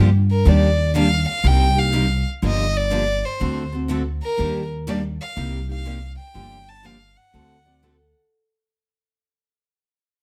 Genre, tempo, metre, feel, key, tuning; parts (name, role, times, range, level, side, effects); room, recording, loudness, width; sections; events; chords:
acoustic string swing (jazz manouche); 122 BPM; 4/4; swing 64% on 8ths; G minor; A4 = 440 Hz
picked steel-string acoustic guitar; accompaniment; 0.0-7.9 s; C3 to A4; -28 LUFS; equal
picked steel-string acoustic guitar; accompaniment; 0.0-8.0 s; C3 to A4; -30 LUFS; equal
upright bass; bass; 0.0-8.1 s; G1 to G2; -22 LUFS; equal
rich violin; melody; 0.3-8.2 s; Bb4 to A5; -27 LUFS; equal
picked steel-string acoustic guitar; second line; 7.7-8.3 s; A4 to D5; -72 LUFS; equal
light reverb; -20 LUFS; mono
0.5-8.3 A section
fade-out 0.5-8.3
0.5 Ebmaj7; 1.4 Cm7; 2.4 Gm7; 3.4 D7; 4.4 Ebmaj7; 5.4 Cm7; 6.4 Gm7; 7.3 D7